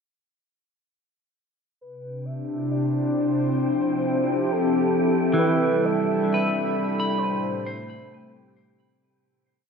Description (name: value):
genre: ambient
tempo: 67 BPM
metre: 4/4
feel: straight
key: C major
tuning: A4 = 440 Hz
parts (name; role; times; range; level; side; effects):
- warm velvety synth lead; melody; 1.8-8.5 s; A4 to E5; -30 LUFS; right 1 dB; chorus, shimmer reverb
- warbly tape-like pad; sustained chords; 2.1-9.0 s; A2 to B5; -23 LUFS; equal; chorus, built-in reverb, shimmer reverb
- wind-like tuned noise texture; texture; 3.0-9.0 s; G5; -36 LUFS; right 1 dB; built-in reverb, shimmer reverb
- clean electric guitar; arpeggios; 5.3-9.7 s; E3 to B5; -26 LUFS; equal; ping-pong delay
- analog drone; drone; 5.7-9.1 s; C3 to G3; -32 LUFS; left 1 dB; chorus
room: wet concert hall reverb, RT60 2.2 s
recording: none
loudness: -21 LUFS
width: side -6 dB against mid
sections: 1.8-9.0 A section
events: fade-in on synth texture 1.8-9.0; fade-in on soft synth lead 1.8-9.0; fade-out 5.4-9.0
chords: 1.8 Cadd9; 3.6 Fmaj7; 5.4 G69; 7.2 Am7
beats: | 1.81 2.70 3.60 4.49 | 5.39 6.28 7.18 8.07